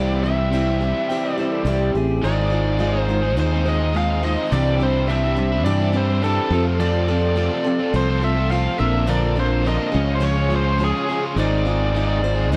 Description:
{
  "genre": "folk rock and heartland rock",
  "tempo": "105 BPM",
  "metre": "4/4",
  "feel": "straight",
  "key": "unclear",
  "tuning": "A4 = 441 Hz",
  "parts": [
    { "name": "biting lead guitar", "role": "melody", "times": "0.0-12.5 s", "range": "Ab4 to F5", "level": "-27 LUFS", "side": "equal", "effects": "overdrive, analog delay" },
    { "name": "picked plugged-in steel-string acoustic guitar", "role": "accompaniment", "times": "0.0-12.6 s", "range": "Bb2 to C5", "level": "-27 LUFS", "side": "equal", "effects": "none" },
    { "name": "bright tonewheel organ", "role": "sustained chords", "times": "0.0-12.6 s", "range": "Eb4 to Db6", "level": "-38 LUFS", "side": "equal", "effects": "none" },
    { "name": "overdriven electric guitar", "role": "riff", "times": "0.0-12.6 s", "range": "F2 to Ab4", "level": "-29 LUFS", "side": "equal", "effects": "none" },
    { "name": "fingered electric bass", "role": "bass", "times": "0.0-12.6 s", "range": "Ab1 to G2", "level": "-23 LUFS", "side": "equal", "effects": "none" },
    { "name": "clean electric guitar", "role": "second line", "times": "1.1-2.2 s", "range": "G4 to G5", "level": "-32 LUFS", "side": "equal", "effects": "none" }
  ],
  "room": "moderate spring reverb, RT60 1.8 s, digital ambience",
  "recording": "dark, warm production",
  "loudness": "-20 LUFS",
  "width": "mono",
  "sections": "0.0-2.2 A section; 2.2-12.6 B section",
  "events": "none",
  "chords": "0.0 C; 2.2 Ab6; 4.5 Cadd9; 6.5 F; 8.8 Bbadd9; 9.9 Db; 11.4 Ab6"
}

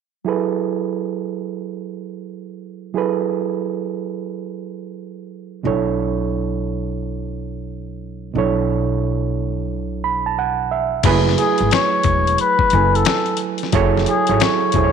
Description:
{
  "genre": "R&B, neo-soul",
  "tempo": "89 BPM",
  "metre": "4/4",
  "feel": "swing 64% on 16ths",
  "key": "F# minor",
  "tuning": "A4 = 440 Hz",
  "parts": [
    { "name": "overdriven reed electric piano", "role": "accompaniment", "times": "0.2-14.9 s", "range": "B2 to B5", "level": "-21 LUFS", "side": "right 9 dB", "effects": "none" },
    { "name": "upright bass", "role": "bass", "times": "5.7-14.9 s", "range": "E1 to B1", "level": "-22 LUFS", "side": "left 3 dB", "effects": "none" },
    { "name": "dusty soul sampler-style drum kit", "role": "drums", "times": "11.0-14.9 s", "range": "crash cymbal, finger snaps, hi-hat, kick drum, snare drum", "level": "-21 LUFS", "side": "left 6 dB", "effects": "none" },
    { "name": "trumpet with cup mute", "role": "melody", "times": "11.4-14.9 s", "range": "G#4 to C#5", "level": "-18 LUFS", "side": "left 4 dB", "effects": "slapback echo" }
  ],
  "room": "light reverb, digital ambience",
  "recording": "1960s-style stereo with parts hard left and right",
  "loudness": "-17 LUFS",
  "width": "side -7 dB against mid",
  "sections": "0.3-11.0 A section; 11.0-14.9 B section",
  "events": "reed electric piano fill 9.7-11.0",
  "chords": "0.3 F#m11; 5.6 Bm11; 11.0 F#m11"
}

